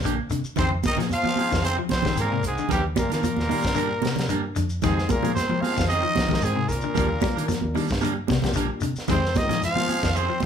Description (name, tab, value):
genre	afrobeat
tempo	113 BPM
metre	4/4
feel	straight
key	F dorian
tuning	A4 = 440 Hz
part	electric guitar at the edge of break-up	stabs	0.0-10.4 s	G3 to Bb4	-31 LUFS	right 6 dB	none
part	fingered electric bass	bass	0.0-10.5 s	Bb1 to F3	-29 LUFS	equal	none
part	shekere	percussion	0.0-10.5 s	none	-35 LUFS	left 2 dB	none
part	semi-hollow electric guitar	arpeggios	0.1-10.4 s	C3 to G3	-30 LUFS	left 8 dB	none
part	tight funk drum kit	drums	0.1-10.5 s	hi-hat, kick drum, snare drum	-29 LUFS	equal	none
part	growling trumpet	melody	0.6-10.4 s	G4 to F5	-27 LUFS	right 1 dB	none
part	brilliant trombone section	second line	0.6-10.4 s	G2 to F3	-32 LUFS	left 4 dB	none
part	raspy tenor saxophone	second line	0.6-10.4 s	G3 to F4	-34 LUFS	right 3 dB	none
part	congas	percussion	0.6-10.5 s	none	-28 LUFS	right 3 dB	none
part	barky reed electric piano	accompaniment	4.8-10.0 s	Ab3 to Bb4	-33 LUFS	left 3 dB	overdrive, fast tremolo
room	moderate large studio reverb, RT60 0.8 s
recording	band playing live in one room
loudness	-21 LUFS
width	side -8 dB against mid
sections	0.0-10.5 A section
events	none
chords	0.0 Ebmaj7 (rootless); 0.6 Fm7; 2.7 Ebmaj7; 4.8 Fm7; 7.0 Ebmaj7; 9.1 Fm7